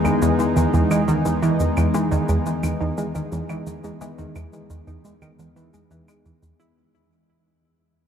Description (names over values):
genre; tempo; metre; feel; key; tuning
ambient, sequencer-driven space music; 87 BPM; 4/4; straight; unclear; A4 = 436 Hz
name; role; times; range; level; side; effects
sweeping resonant pad; sustained chords; 0.0-6.8 s; E3 to G#4; -23 LUFS; left 1 dB; chorus
warbly dusty pluck; arpeggios; 0.0-6.8 s; D#3 to E4; -25 LUFS; right 1 dB; chorus, auto-pan, ping-pong delay
cabasa and claves; percussion; 0.0-6.7 s; none; -38 LUFS; equal; ping-pong delay
tight sequenced synth; riff; 0.1-6.5 s; E2 to G#3; -23 LUFS; right 1 dB; chorus, ping-pong delay
room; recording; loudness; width
wet huge ambient reverb, RT60 8.4 s; dark, warm production; -18 LUFS; side -8 dB against mid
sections
0.0-6.8 A section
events
fade-out 0.0-6.8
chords
0.0 Emaj7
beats
0.56 | 1.25 1.94 2.63 3.32 | 4.01 4.70 5.39 6.08